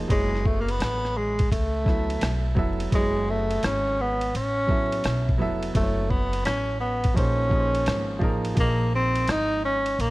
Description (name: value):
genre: hip hop, jazz-hop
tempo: 85 BPM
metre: 4/4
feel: swing 66% on 16ths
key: unclear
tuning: A4 = 440 Hz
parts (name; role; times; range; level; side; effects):
- warm upright piano; accompaniment; 0.0-9.8 s; F3 to Fb5; -31 LUFS; right 2 dB; none
- upright bass; bass; 0.0-10.1 s; F1 to Db2; -28 LUFS; equal; none
- warm tenor saxophone; melody; 0.1-10.1 s; Ab3 to Eb4; -26 LUFS; equal; none
- boom bap sampler-style drum kit; drums; 0.1-10.1 s; hi-hat, kick drum, ride cymbal, rim click; -27 LUFS; equal; none
room: light reverb, small room ambience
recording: dark, warm production, vinyl crackle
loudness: -22 LUFS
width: side -19 dB against mid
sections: 0.0-10.1 A section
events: none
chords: 0.1 Gbm9; 7.2 Bbm9